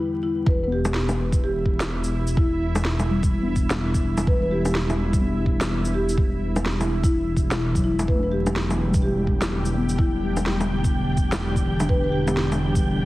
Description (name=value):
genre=future garage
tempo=126 BPM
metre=4/4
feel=swing 61% on 16ths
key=E minor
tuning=A4 = 440 Hz
part: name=marimba with soft mallets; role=melody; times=0.0-12.3 s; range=E4 to B4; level=-29 LUFS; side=equal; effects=tape echo
part: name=muted felt-like synth keys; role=accompaniment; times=0.0-13.1 s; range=F#3 to E4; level=-29 LUFS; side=left 2 dB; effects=chorus, sidechain pumping, tape echo
part: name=dark detuned saw bass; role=bass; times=0.5-13.1 s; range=E1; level=-25 LUFS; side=equal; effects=sidechain pumping
part: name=electronic kick drum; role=drums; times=0.5-12.8 s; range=none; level=-22 LUFS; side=equal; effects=none
part: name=ethereal airy pad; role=sustained chords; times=0.6-13.1 s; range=D3 to G4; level=-30 LUFS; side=right 1 dB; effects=ensemble chorus, built-in reverb, sidechain pumping
part: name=electronic bongos, shaker and snare drum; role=drums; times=0.9-12.8 s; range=none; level=-28 LUFS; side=equal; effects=low-pass filter on perc, low-pass filter on snare, low-pass filter on room
part: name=wind-like tuned noise texture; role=texture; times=8.8-13.1 s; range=G5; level=-36 LUFS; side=right 4 dB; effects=built-in reverb
room=light reverb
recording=heavily compressed radio sound, multiband compression, vinyl crackle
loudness=-20 LUFS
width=side -18 dB against mid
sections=0.5-13.1 A section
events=break 0.0-0.5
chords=0.5 Em7; 8.1 G/E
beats=| 0.46 0.94 1.42 1.89 | 2.37 2.85 3.32 3.80 | 4.27 4.75 5.23 5.70 | 6.18 6.65 7.13 7.61 | 8.08 8.56 9.04 9.51 | 9.99 10.46 10.94 11.42 | 11.89 12.37 12.85